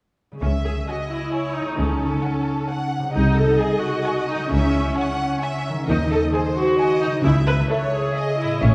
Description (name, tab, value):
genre	cinematic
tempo	132 BPM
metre	3/4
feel	straight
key	C# minor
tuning	A4 = 443 Hz
part	concert harp	arpeggios	0.3-8.7 s	A2 to C#5	-30 LUFS	equal	none
part	rich chamber violin section	second line	0.4-8.7 s	A4 to F#5	-31 LUFS	equal	none
part	rich chamber viola section	accompaniment	0.4-8.7 s	C#4 to B4	-26 LUFS	equal	none
part	clear studio cello section	bass	0.4-8.7 s	A2 to D#3	-29 LUFS	equal	none
part	rich chamber double bass section	bass	0.4-8.7 s	A1 to D#2	-26 LUFS	equal	none
part	clear chamber violin section	melody	0.9-8.7 s	E5 to G#5	-35 LUFS	equal	none
room	wet concert hall reverb, RT60 2.0 s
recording	dark, warm production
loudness	-21 LUFS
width	mono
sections	0.4-8.7 A section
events	none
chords	0.4 C#m; 1.8 D#m7b5/C#; 3.2 G#7/B#; 4.5 C#m; 5.9 G#7/D#; 7.2 C#m